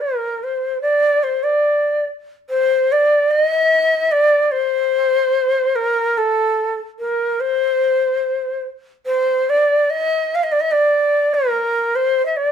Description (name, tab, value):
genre	persian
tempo	73 BPM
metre	4/4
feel	straight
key	D dastgah shur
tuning	A4 = 440 Hz
part	breathy bright ney	solo	0.0-12.5 s	A4 to F5	-15 LUFS	equal	none
room	moderate studio reverb, RT60 0.8 s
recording	band playing live in one room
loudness	-15 LUFS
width	side -8 dB against mid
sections	0.0-2.5 A section; 2.5-12.5 B section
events	none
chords	none